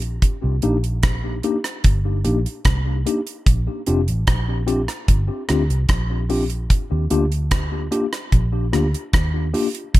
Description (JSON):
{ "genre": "lovers rock reggae", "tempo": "74 BPM", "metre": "4/4", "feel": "straight", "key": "unclear", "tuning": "A4 = 440 Hz", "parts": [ { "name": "vintage muted fingered electric bass", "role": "bass", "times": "0.0-10.0 s", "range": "F1 to Eb2", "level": "-21 LUFS", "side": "equal", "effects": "none" }, { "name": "deep reggae drum kit", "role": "drums", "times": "0.0-10.0 s", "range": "hi-hat, kick drum, rim click", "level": "-19 LUFS", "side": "equal", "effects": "gated reverb" }, { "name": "mellow tine electric piano", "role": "accompaniment", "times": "0.6-9.8 s", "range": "Bb3 to G4", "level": "-24 LUFS", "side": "left 3 dB", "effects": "medium stereo tremolo, tape echo" } ], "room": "small room ambience", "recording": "none", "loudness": "-18 LUFS", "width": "side -16 dB against mid", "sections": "0.0-10.0 A section", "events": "none", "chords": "0.2 Cm7; 3.5 Bb6; 6.7 Ebmaj7" }